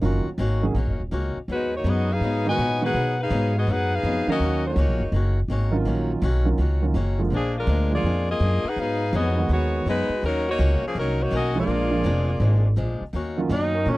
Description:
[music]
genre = jazz, big band swing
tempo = 165 BPM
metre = 4/4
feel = swing 65% on 8ths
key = Eb minor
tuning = A4 = 440 Hz
[part]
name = picked swing-style acoustic guitar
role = accompaniment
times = 0.0-14.0 s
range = Ab2 to Gb4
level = -31 LUFS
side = left 3 dB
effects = none
[part]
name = warm grand piano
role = accompaniment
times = 0.0-13.5 s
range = D3 to F5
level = -26 LUFS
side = right 4 dB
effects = none
[part]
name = upright bass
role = bass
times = 0.0-14.0 s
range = Eb1 to Cb3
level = -23 LUFS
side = equal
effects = none
[part]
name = clear saxophone section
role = melody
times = 1.5-5.1, 7.3-12.8 s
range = F3 to Ab5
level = -25 LUFS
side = left 1 dB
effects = none
[part]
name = warm tenor saxophone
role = melody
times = 13.5-14.0 s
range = Db4 to Eb4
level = -23 LUFS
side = right 2 dB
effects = none
[part]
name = bright trombone section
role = sustained chords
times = 13.7-14.0 s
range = Gb3 to Bb4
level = -29 LUFS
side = left 1 dB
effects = none
[sound]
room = little or no reverb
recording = dry, close 1970s-style studio recording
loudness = -20 LUFS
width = side -18 dB against mid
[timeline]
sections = 0.0-13.1 A section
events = none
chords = 0.0 Ebm7; 7.3 Bb7; 8.8 Abm7; 10.2 Ebm7; 11.7 Bb7; 13.1 Ebm7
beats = | 0.02 0.39 0.75 1.12 | 1.48 1.85 2.21 2.58 | 2.94 3.30 3.67 4.03 | 4.40 4.76 5.13 5.49 | 5.86 6.22 6.58 6.95 | 7.31 7.68 8.04 8.41 | 8.77 9.13 9.50 9.86 | 10.23 10.59 10.96 11.32 | 11.68 12.05 12.41 12.78 | 13.14 13.51 13.87

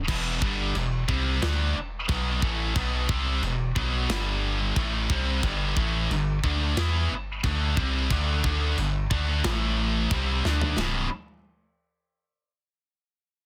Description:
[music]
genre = heavy metal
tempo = 90 BPM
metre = 4/4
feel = straight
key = B phrygian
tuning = A4 = 442 Hz
[part]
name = scooped high-gain guitar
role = riff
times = 0.0-11.1 s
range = B1 to E4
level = -29 LUFS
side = equal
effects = distortion
[part]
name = punchy sub bass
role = bass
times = 0.0-11.1 s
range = B0 to E2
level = -30 LUFS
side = equal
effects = none
[part]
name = tight metal drum kit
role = drums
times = 0.1-10.9 s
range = china cymbal, crash cymbal, kick drum, ride cymbal, snare drum, toms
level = -34 LUFS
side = equal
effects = soft clipping on snare
[sound]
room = little or no reverb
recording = dense, heavily limited modern master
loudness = -26 LUFS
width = mono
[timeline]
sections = 0.0-10.8 A section; 10.8-13.5 B section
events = drum fill 10.4-10.8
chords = 0.1 E5; 4.1 G5; 4.8 Am7; 5.4 G5; 9.4 A5; 10.1 G5; 10.8 B5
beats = | 0.09 0.76 1.43 2.10 | 2.77 3.44 4.10 4.77 | 5.44 6.11 6.78 7.45 | 8.11 8.78 9.45 10.12 | 10.78

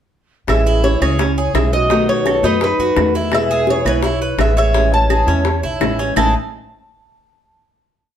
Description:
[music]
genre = latin, Cuban son and guajira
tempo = 169 BPM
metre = 4/4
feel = straight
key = A major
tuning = A4 = 441 Hz
[part]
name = Cuban tres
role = melody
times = 0.5-6.3 s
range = B4 to A5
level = -18 LUFS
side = left 1 dB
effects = plate reverb
[part]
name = mellow hollow jazz flute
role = second line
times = 0.5-6.3 s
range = D#4 to C#5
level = -24 LUFS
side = right 5 dB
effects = none
[part]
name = nylon-string guitar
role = accompaniment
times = 0.5-6.3 s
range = A2 to F#4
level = -22 LUFS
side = left 3 dB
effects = none
[part]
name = upright bass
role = bass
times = 0.5-6.3 s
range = A1 to F#2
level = -19 LUFS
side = equal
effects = none
[part]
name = bongos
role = percussion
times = 0.5-6.2 s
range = none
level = -22 LUFS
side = left 3 dB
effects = none
[part]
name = claves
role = percussion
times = 0.5-6.2 s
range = none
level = -25 LUFS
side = right 4 dB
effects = none
[part]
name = Cuban tres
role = arpeggios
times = 0.7-6.3 s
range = A3 to D#5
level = -22 LUFS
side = right 3 dB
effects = none
[sound]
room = moderate studio reverb, RT60 0.8 s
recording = heard from further back in the room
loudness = -13 LUFS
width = side -9 dB against mid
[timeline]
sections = 0.5-6.2 A section; 6.2-7.6 final chord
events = none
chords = 0.5 Amaj7; 1.9 B7; 3.3 Amaj7; 6.2 Amaj7(no3)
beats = | 0.48 0.84 1.20 1.55 | 1.91 2.26 2.62 2.97 | 3.33 3.68 4.04 4.39 | 4.75 5.10 5.46 5.81 | 6.17

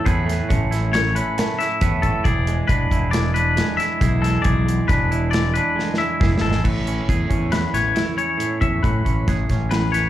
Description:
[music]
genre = math rock and midwest emo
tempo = 136 BPM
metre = 5/4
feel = straight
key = A major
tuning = A4 = 440 Hz
[part]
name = twangy electric guitar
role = accompaniment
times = 0.0-10.1 s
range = E2 to B4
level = -24 LUFS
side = right 5 dB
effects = none
[part]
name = twangy electric guitar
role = arpeggios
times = 0.0-10.1 s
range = A4 to E5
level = -23 LUFS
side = left 5 dB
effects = slapback echo
[part]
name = growling fingered electric bass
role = bass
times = 0.1-10.1 s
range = E1 to A2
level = -21 LUFS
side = left 1 dB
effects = overdrive
[part]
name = modern studio drum kit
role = drums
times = 0.1-10.0 s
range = crash cymbal, hi-hat, kick drum, snare drum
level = -23 LUFS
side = equal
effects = none
[sound]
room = studio reverb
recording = live gig heard through the venue's PA, club reverb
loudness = -17 LUFS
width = side -13 dB against mid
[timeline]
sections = 0.0-6.6 A section; 6.6-10.1 B section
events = drum fill 5.8-6.6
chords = 0.0 Amaj9; 2.2 E7; 6.6 Amaj9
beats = | 0.05 0.49 0.93 1.37 1.81 | 2.25 2.69 3.13 3.57 4.01 | 4.45 4.89 5.33 5.76 6.20 | 6.64 7.08 7.52 7.96 8.40 | 8.84 9.28 9.72

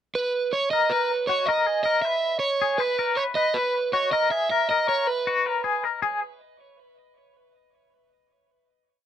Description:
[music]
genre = rock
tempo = 317 BPM (eighths)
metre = 7/8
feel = straight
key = G# minor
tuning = A4 = 440 Hz
[part]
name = overdriven semi-hollow guitar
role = melody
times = 0.2-5.8 s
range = B4 to E5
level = -24 LUFS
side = right 3 dB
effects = none
[part]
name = twangy electric guitar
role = arpeggios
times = 0.7-6.2 s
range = F#4 to B4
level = -24 LUFS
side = left 6 dB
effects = tremolo
[sound]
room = light reverb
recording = dark, warm production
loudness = -21 LUFS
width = side -10 dB against mid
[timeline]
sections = 0.0-0.7 pickup bar; 0.7-6.0 A section; 6.0-7.3 final note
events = none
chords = 0.0 N.C.; 0.7 G#m9; 2.0 C#m7; 3.4 F#13; 4.7 G#m9; 6.0 N.C.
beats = 0.15 0.34 0.53 | 0.72 0.91 1.10 1.29 1.48 1.66 1.85 | 2.04 2.23 2.42 2.61 2.80 2.99 3.18 | 3.37 3.56 3.75 3.94 4.12 4.31 4.50 | 4.69 4.88 5.07 5.26 5.45 5.64 5.83 | 6.02

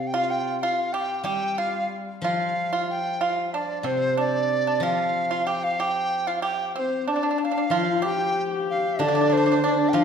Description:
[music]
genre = chinese traditional, Chinese chamber ensemble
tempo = 94 BPM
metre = 2/4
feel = rubato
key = unclear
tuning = A4 = 440 Hz
[part]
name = large dizi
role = melody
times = 0.0-10.0 s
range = C5 to G5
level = -25 LUFS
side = right 1 dB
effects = none
[part]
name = steel-string zither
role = accompaniment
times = 0.0-10.0 s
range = C3 to G3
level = -29 LUFS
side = left 3 dB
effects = none
[part]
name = pipa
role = second line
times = 0.1-10.0 s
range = C4 to G4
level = -27 LUFS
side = right 3 dB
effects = none
[part]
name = dark horsehead fiddle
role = second line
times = 6.8-10.0 s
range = C4 to G4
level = -25 LUFS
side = left 4 dB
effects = none
[sound]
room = wet recital hall reverb, RT60 1.5 s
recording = recorded in a church or concert hall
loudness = -22 LUFS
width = side -7 dB against mid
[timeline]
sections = 0.0-7.7 A section; 7.7-10.0 B section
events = none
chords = none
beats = 0.62 | 1.25 1.91 | 2.56 3.22 | 3.86 4.50 | 5.14 5.78 | 6.42 7.07 | 7.72 8.36 | 9.00 9.63

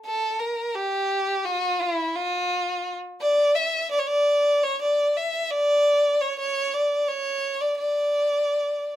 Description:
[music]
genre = turkish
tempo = free time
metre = none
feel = none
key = unclear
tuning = A4 = 440 Hz
[part]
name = rich violin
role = solo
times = 0.1-9.0 s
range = E4 to E5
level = -21 LUFS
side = equal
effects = none
[sound]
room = moderate small room reverb, RT60 0.6 s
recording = minimal, uncompressed stereo recording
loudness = -21 LUFS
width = side -12 dB against mid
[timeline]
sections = 0.0-9.0 A section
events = none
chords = none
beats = free time

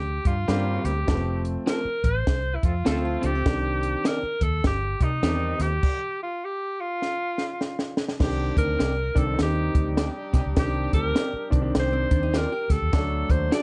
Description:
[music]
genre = uptempo 1960s-style soul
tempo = 101 BPM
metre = 4/4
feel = swing 61% on 8ths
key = unclear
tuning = A4 = 439 Hz
[part]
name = bright alto saxophone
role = melody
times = 0.0-13.6 s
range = Eb4 to D5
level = -31 LUFS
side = equal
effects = none
[part]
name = vintage muted fingered electric bass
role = bass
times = 0.0-13.5 s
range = F1 to C3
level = -29 LUFS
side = equal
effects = none
[part]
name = clear horn section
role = second line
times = 0.2-5.8, 9.4-12.7 s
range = D3 to A4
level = -40 LUFS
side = equal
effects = none
[part]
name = compact cocktail drum kit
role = drums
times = 0.3-13.6 s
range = crash cymbal, hi-hat, kick drum, snare drum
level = -27 LUFS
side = equal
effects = none
[part]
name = clear concert grand piano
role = accompaniment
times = 0.5-13.5 s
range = Eb3 to Eb4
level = -33 LUFS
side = equal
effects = none
[part]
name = electric guitar through a small old amp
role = stabs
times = 0.5-13.6 s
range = C4 to D5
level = -34 LUFS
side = equal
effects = none
[part]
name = hollow-body jazz guitar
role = riff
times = 2.9-3.6, 11.9-12.9 s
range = C4 to A4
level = -35 LUFS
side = equal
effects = none
[sound]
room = light reverb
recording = dark, warm production, nothing above 10.3 kHz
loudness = -25 LUFS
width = mono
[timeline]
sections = 0.0-8.2 A section; 8.2-13.6 B section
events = stop 5.8-8.2; drum fill 7.0-8.2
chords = 0.0 Gm; 1.1 F; 3.5 Cmadd9; 5.8 N.C.; 8.2 Cmadd9; 12.9 D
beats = 0.48 | 1.08 1.67 2.27 2.86 | 3.46 4.05 4.64 5.24 | 5.83 6.42 7.02 7.61 | 8.20 8.80 9.39 9.98 | 10.57 11.17 11.76 12.35 | 12.94 13.53

